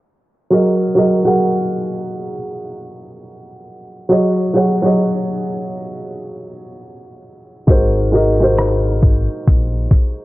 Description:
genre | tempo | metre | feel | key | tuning
lo-fi hip hop | 67 BPM | 4/4 | swing 64% on 16ths | F# major | A4 = 440 Hz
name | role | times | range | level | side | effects
dark upright piano | accompaniment | 0.5-10.2 s | F#3 to F#5 | -16 LUFS | equal | none
deep dub fingered electric bass | bass | 7.7-9.9 s | G#1 to A#1 | -18 LUFS | equal | none
lo-fi sampler-style drum kit | drums | 7.7-10.2 s | hi-hat, kick drum, rim click | -13 LUFS | equal | none
room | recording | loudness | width
light reverb, digital ambience | worn, warbling old tape, cassette tape, warbly pitch drift, low-pass filter | -13 LUFS | side -18 dB against mid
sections
0.5-10.2 A section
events
filter sweep 0.5-10.2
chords
0.5 F#6; 4.1 F#sus2; 7.7 G#7

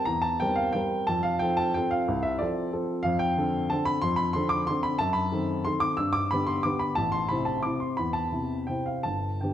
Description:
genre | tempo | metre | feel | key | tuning
classical, piano waltz | 154-197 BPM | 3/4 | rubato | F major | A4 = 440 Hz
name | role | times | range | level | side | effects
warm upright piano | solo | 0.0-9.5 s | G1 to E6 | -25 LUFS | equal | none
room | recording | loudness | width
wet recital hall reverb, RT60 1.3 s | dark, warm production | -25 LUFS | side -10 dB against mid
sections
0.0-9.5 A section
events
none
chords
0.0 C7/E; 1.1 F; 3.0 Dm7/F; 5.0 F#dim7; 6.0 G; 7.0 Am

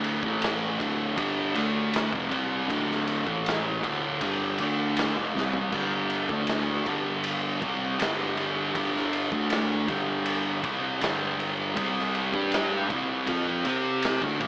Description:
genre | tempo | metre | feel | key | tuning
stoner and doom metal | 79 BPM | 4/4 | straight | D minor | A4 = 439 Hz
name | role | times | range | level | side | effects
fuzz guitar | riff | 0.0-14.5 s | D2 to C5 | -28 LUFS | left 1 dB | distortion
thick fuzz guitar | riff | 0.0-14.5 s | D2 to C5 | -30 LUFS | right 2 dB | distortion
fingered electric bass | bass | 0.0-14.5 s | D1 to C3 | -39 LUFS | equal | tube saturation
raw garage drum kit | drums | 0.0-14.5 s | crash cymbal, kick drum, ride cymbal, snare drum, toms | -30 LUFS | equal | none
room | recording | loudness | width
light reverb, studio reverb | AM radio sound | -24 LUFS | side -23 dB against mid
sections
0.0-14.5 A section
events
drum fill 5.3-5.7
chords
0.0 Dm; 5.7 G5; 11.8 C5

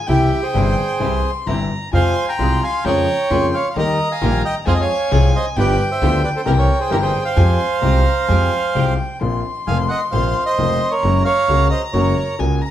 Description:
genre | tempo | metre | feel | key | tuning
tango | 132 BPM | 4/4 | rubato | F minor, Bb minor from 9.2 s | A4 = 440 Hz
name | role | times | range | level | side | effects
warm violin | second line | 0.0-12.7 s | G5 to C6 | -25 LUFS | left 2 dB | none
bandoneon | melody | 0.1-12.4 s | E4 to Bb5 | -19 LUFS | right 3 dB | none
warm grand piano | accompaniment | 0.1-12.6 s | F1 to Ab4 | -21 LUFS | left 4 dB | none
rich studio string section | stabs | 0.1-8.9 s | Ab3 to Bb4 | -30 LUFS | right 2 dB | none
upright bass | bass | 0.1-12.6 s | F1 to F2 | -19 LUFS | equal | none
room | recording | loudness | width
moderate large studio reverb, RT60 1.1 s | band playing live in one room | -15 LUFS | side -11 dB against mid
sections
0.0-9.2 A section; 9.2-12.7 B section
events
none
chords
0.1 C; 1.9 Fm; 2.9 Bbm7/F; 3.8 Eb; 4.7 Fm; 5.6 G7; 6.5 C7; 7.4 Fmadd9; 9.2 Bbsus2; 11.0 Gbadd9

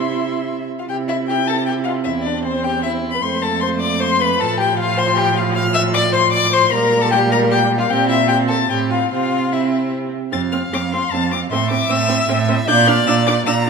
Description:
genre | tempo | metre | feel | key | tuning
quick classical-period movement for string quartet | 153 BPM | 3/4 | straight | C major, F major from 5.6 s | A4 = 444 Hz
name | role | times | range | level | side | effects
rich violin | melody | 0.0-13.7 s | C5 to A6 | -19 LUFS | left 7 dB | none
warm violin | second line | 0.0-13.7 s | C4 to Bb5 | -22 LUFS | left 2 dB | none
rich viola | accompaniment | 0.0-13.7 s | F3 to E4 | -23 LUFS | right 3 dB | none
rich cello | bass | 0.0-13.7 s | E2 to C3 | -21 LUFS | right 5 dB | none
room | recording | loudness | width
moderate scoring stage reverb, RT60 2.1 s | none | -15 LUFS | side -5 dB against mid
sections
0.9-10.3 A section; 10.3-13.7 B section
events
none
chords
0.0 C; 2.1 C/E; 3.2 F; 4.4 F/A; 6.7 Gm/Bb; 7.9 C7/Bb; 8.7 F/A; 9.1 C; 10.3 F5; 11.5 Am; 12.7 Bb

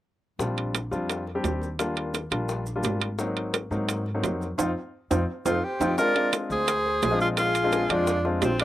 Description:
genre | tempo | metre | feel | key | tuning
Afro-Cuban jazz | 172 BPM | 4/4 | straight | Bb major | A4 = 440 Hz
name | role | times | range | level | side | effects
clear baby grand piano | accompaniment | 0.4-8.6 s | Gb3 to G4 | -29 LUFS | left 2 dB | none
upright bass | bass | 0.4-8.6 s | Ab1 to Ab2 | -31 LUFS | equal | none
bongos | percussion | 0.4-8.6 s | none | -36 LUFS | left 4 dB | none
maracas | percussion | 0.4-8.6 s | none | -40 LUFS | right 3 dB | none
timbales | percussion | 0.6-8.6 s | none | -29 LUFS | right 6 dB | none
breathy tenor saxophone | melody | 5.5-8.6 s | C4 to Bb4 | -25 LUFS | equal | none
breathy mellow jazz flute | second line | 5.5-8.6 s | F4 to D5 | -30 LUFS | right 1 dB | none
room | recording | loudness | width
little or no reverb | recorded outdoors, with no room sound | -24 LUFS | side -14 dB against mid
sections
0.4-6.0 A section; 6.0-8.6 B section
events
band accent 4.6-6.0; drum fill 5.1-6.0; grand piano fill 5.5-6.0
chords
0.4 Bb6; 1.8 Ebmaj9; 3.2 Ab9; 4.6 Fsus2; 6.0 Bb9

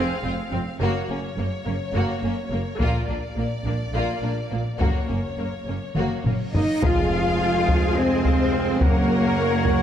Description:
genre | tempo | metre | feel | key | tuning
cinematic, epic orchestral film score | 211 BPM (eighths) | 7/8 | straight | F phrygian | A4 = 440 Hz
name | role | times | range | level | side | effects
rich symphonic violin section | melody | 0.0-9.8 s | Db5 to Ab5 | -35 LUFS | left 5 dB | none
rich symphonic violin section | second line | 0.0-9.8 s | Bb3 to F5 | -31 LUFS | left 2 dB | none
clear symphonic viola section | accompaniment | 0.0-9.8 s | Bb3 to Db5 | -29 LUFS | equal | none
rich symphonic cello section | bass | 0.0-9.8 s | F2 to F4 | -27 LUFS | right 1 dB | none
rich symphonic double bass section | bass | 0.0-9.8 s | F1 to Gb2 | -28 LUFS | right 2 dB | none
taiko ensemble | drums | 2.8-9.8 s | none | -24 LUFS | left 1 dB | none
reverse cymbal and impact | sound effects | 6.6-8.8 s | none | -32 LUFS | left 1 dB | none
mellow French horn section | sustained chords | 6.5-9.8 s | Bb3 to F4 | -29 LUFS | left 4 dB | none
warm trombone section | sustained chords | 6.8-9.8 s | C3 to Ab3 | -30 LUFS | right 2 dB | none
warm woodwind section | sustained chords | 6.8-9.8 s | Bb3 to Gb5 | -32 LUFS | left 1 dB | none
warm tuba | bass | 6.8-9.8 s | F1 to Gb1 | -29 LUFS | right 2 dB | none
room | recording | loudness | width
wet scoring stage reverb, RT60 1.6 s | dark, warm production | -20 LUFS | side -9 dB against mid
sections
0.0-6.8 A section; 6.8-9.8 B section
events
build-up 0.0-6.8; drum fill 6.0-6.8; reverse cymbal 6.6; impact 6.8-8.8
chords
0.0 Fm; 0.8 Gb; 2.8 Bb; 4.8 Gb; 6.8 Fm; 8.8 Gb

